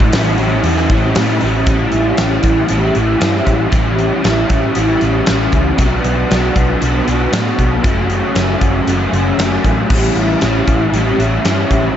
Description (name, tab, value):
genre	rock, shoegaze and dream pop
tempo	117 BPM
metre	4/4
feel	straight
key	A mixolydian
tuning	A4 = 440 Hz
part	crunchy overdriven guitar	riff	0.0-12.0 s	F#2 to E4	-14 LUFS	equal	ensemble chorus
part	hollow-body short-scale picked electric bass	bass	0.0-11.9 s	F#1 to A2	-18 LUFS	equal	none
part	huge arena drum kit	drums	0.0-11.8 s	crash cymbal, hi-hat, kick drum, snare drum	-18 LUFS	equal	none
room	moderate plate reverb, RT60 1.9 s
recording	dreamy mix soaked in reverb, nothing above 7.9 kHz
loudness	-12 LUFS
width	side -10 dB against mid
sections	0.0-1.7 A section; 1.7-12.0 B section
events	none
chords	0.0 A7; 5.8 Bm; 7.8 F#m; 9.9 A7